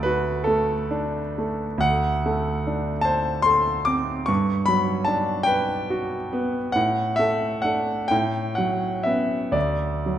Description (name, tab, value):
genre	classical, romantic nocturne for solo piano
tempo	39-51 BPM (dotted quarters)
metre	6/8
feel	rubato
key	D major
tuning	A4 = 440 Hz
part	clear concert grand piano	solo	0.0-10.2 s	D2 to D6	-21 LUFS	equal	none
room	wet recital hall reverb, RT60 1.7 s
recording	none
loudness	-21 LUFS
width	side -11 dB against mid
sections	0.0-10.2 A section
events	none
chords	0.0 D; 1.8 D7; 4.3 Gmaj7; 6.8 D5/A; 8.1 A69; 9.5 D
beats	0.48 | 1.85 3.06 | 4.29 5.48 | 6.75 8.10 | 9.54